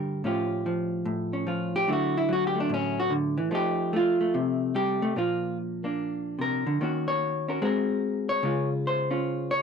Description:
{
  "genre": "solo jazz",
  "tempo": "147 BPM",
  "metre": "4/4",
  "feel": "swing 65% on 8ths",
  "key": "unclear",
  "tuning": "A4 = 438 Hz",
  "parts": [
    { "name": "vintage hollow-body jazz guitar", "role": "solo", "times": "0.0-9.6 s", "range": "G2 to Db5", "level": "-25 LUFS", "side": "equal", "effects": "none" }
  ],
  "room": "little or no reverb",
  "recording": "dry, close 1970s-style studio recording",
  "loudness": "-25 LUFS",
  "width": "side -6 dB against mid",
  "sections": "0.0-5.1 A section; 5.1-9.6 A section",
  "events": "hollow-body jazz guitar solo 0.0-9.6",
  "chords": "0.2 Aaug7; 1.9 Dadd9; 3.5 F7; 5.1 Bb; 6.8 Ebm7; 7.6 Ab9; 8.4 Dbmaj7"
}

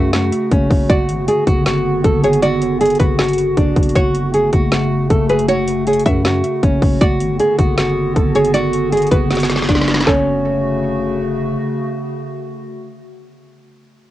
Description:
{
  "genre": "hip hop, trap",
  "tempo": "157 BPM",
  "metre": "4/4",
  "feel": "half-time",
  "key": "F# minor",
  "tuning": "A4 = 441 Hz",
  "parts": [
    { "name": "nylon-string guitar", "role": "melody", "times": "0.0-11.2 s", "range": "C#4 to A4", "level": "-17 LUFS", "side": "right 1 dB", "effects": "cassette tape, tape echo" },
    { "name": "string-like resonator pluck", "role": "second line", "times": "0.0-11.2 s", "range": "A4 to E5", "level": "-22 LUFS", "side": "equal", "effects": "chorus, cassette tape, tape echo" },
    { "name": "warbly tape-like pad", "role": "sustained chords", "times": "0.0-13.5 s", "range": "C#3 to F#4", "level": "-21 LUFS", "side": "equal", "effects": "chorus, built-in reverb, cassette tape" },
    { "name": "growling 808-style bass", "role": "bass", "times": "0.0-11.6 s", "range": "F#1 to F#2", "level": "-20 LUFS", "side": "equal", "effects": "none" },
    { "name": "trap drum kit", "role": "drums", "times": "0.1-10.2 s", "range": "handclaps, hi-hat, kick drum, snare drum", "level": "-17 LUFS", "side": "equal", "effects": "cassette tape" }
  ],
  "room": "little or no reverb",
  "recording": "home recording on cassette",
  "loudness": "-13 LUFS",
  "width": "side -14 dB against mid",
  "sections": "0.0-10.1 A section; 10.1-13.1 B section",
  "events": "drum fill 9.3-10.1",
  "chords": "0.0 F#m; 0.9 Bm/F#; 4.0 F#m; 7.0 Bm/F#; 10.1 F#m"
}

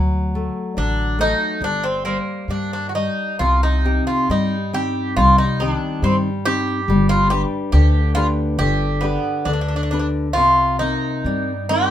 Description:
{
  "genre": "fado-style ballad",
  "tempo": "69 BPM",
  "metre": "2/4",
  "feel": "uneven beats, rubato",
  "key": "G harmonic minor, C minor from 3.4 s",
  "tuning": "A4 = 440 Hz",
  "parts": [
    { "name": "nylon-string guitar", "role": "accompaniment", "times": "0.0-11.9 s", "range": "C3 to B4", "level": "-22 LUFS", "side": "left 2 dB", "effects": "none" },
    { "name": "upright bass", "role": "bass", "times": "0.0-11.9 s", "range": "G1 to G2", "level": "-20 LUFS", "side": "equal", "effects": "none" },
    { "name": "Greek bouzouki", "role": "melody", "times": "0.8-11.9 s", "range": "Bb3 to G4", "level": "-20 LUFS", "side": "right 1 dB", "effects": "none" }
  ],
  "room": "light reverb",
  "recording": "minimal, uncompressed stereo recording",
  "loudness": "-17 LUFS",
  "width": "side -11 dB against mid",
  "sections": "0.0-3.4 A section; 3.4-11.9 B section",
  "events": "none",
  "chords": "0.0 D; 1.6 Gm; 3.4 Cm; 6.9 G; 10.4 Cm7"
}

